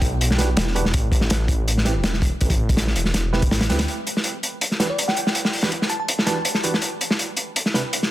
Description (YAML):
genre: drum and bass, jungle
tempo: 163 BPM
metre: 4/4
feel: straight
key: E minor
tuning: A4 = 441 Hz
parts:
  - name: dark detuned saw bass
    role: bass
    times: 0.0-3.9 s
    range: E1 to D2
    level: -22 LUFS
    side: equal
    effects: tube saturation
  - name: crunchy breakbeat drum kit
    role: drums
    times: 0.0-8.1 s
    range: hi-hat, kick drum, snare drum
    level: -20 LUFS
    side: equal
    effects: high-pass filter on kick, high-pass filter on hats, high-pass filter on snare, high-pass filter on room
  - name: tine electric piano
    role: stabs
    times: 0.4-7.8 s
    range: C3 to B4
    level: -30 LUFS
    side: right 4 dB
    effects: dub echo
  - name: bell-like FM electric piano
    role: melody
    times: 4.9-6.6 s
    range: D5 to A5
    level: -30 LUFS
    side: equal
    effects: chorus, dub echo
room: light reverb, small room ambience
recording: dense, heavily limited modern master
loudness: -19 LUFS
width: side -15 dB against mid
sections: 0.0-3.9 A section; 3.9-8.1 B section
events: drop 0.0-3.9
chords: 0.0 Em7; 0.9 A5; 3.9 Em7; 6.8 Cmaj7